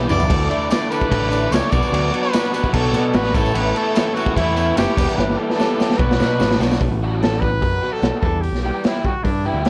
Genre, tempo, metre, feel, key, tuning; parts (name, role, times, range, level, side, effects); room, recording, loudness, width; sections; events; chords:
indie rock; 148 BPM; 4/4; straight; B minor; A4 = 440 Hz
mellow tonewheel organ; sustained chords; 0.0-6.8 s; A4 to D6; -33 LUFS; equal
crunchy overdriven guitar; riff; 0.0-9.7 s; E2 to G4; -28 LUFS; equal; ensemble chorus
twangy electric guitar; riff; 0.0-9.7 s; B2 to D5; -28 LUFS; equal
growling picked electric bass; bass; 0.0-9.7 s; E1 to B2; -24 LUFS; equal; overdrive
tambourine; percussion; 0.0-6.8 s; -43 LUFS; equal
clear trumpet; melody; 0.1-9.7 s; D4 to D5; -25 LUFS; equal
bell-like tine electric piano; second line; 0.1-6.6 s; E5 to D6; -36 LUFS; equal
raw garage drum kit; drums; 0.1-9.7 s; crash cymbal, hi-hat, kick drum, snare drum, toms; -23 LUFS; equal
moderate small room reverb, RT60 0.5 s; worn, warbling old tape, cassette tape, warbly pitch drift; -19 LUFS; mono
0.0-6.8 A section; 6.8-9.7 B section
drum fill 0.0-0.3, 5.2-6.8
0.3 Dsus2; 1.7 Bmadd9; 3.4 Aadd9; 5.0 Em7; 6.0 Bm7; 8.2 Em7